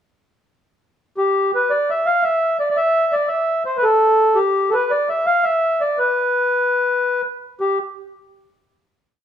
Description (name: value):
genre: celtic folk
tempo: 112 BPM (dotted quarters)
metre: 9/8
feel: straight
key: unclear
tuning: A4 = 439 Hz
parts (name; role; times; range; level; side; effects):
- mellow accordion; solo; 1.2-7.8 s; G4 to F5; -16 LUFS; equal; none
room: moderate large studio reverb, RT60 1.2 s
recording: band playing live in one room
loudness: -16 LUFS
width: side -9 dB against mid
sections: 1.2-7.6 A section; 7.6-9.2 final note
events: none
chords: none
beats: | 1.17 1.71 2.24 | 2.77 3.31 3.84 | 4.38 4.92 5.45 | 5.99 6.53 7.06 | 7.60